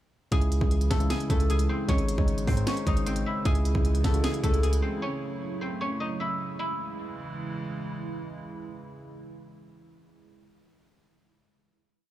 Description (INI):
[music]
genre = hip hop, trap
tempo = 153 BPM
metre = 4/4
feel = half-time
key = C# harmonic minor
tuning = A4 = 440 Hz
[part]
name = guzheng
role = melody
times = 0.3-9.2 s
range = A3 to G#5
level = -33 LUFS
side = left 1 dB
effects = low-pass filter, tape echo
[part]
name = tine electric piano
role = accompaniment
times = 0.3-5.0 s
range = C#3 to C#5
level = -32 LUFS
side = left 3 dB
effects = low-pass filter
[part]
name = hollow soft pad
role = sustained chords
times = 0.8-10.4 s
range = C#3 to E4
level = -36 LUFS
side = right 2 dB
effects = chorus
[part]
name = long sustained 808-style bass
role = bass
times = 0.3-4.8 s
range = G#1 to G#2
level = -26 LUFS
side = equal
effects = none
[part]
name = trap drum kit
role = drums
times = 0.3-4.8 s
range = hi-hat, kick drum, snare drum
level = -27 LUFS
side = right 1 dB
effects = none
[sound]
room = little or no reverb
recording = studio ambience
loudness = -25 LUFS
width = side -14 dB against mid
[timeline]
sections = 0.3-6.6 hook; 6.6-9.7 final chord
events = none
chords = 0.3 C#m; 1.9 G#sus4; 3.5 C#m; 5.0 A6; 6.6 C#m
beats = | 0.32 0.71 1.10 1.50 | 1.89 2.28 2.67 3.06 | 3.46 3.85 4.24 4.63 | 5.02 5.42 5.81 6.20 | 6.59 6.99 7.38 7.77 | 8.16 8.55 8.95 9.34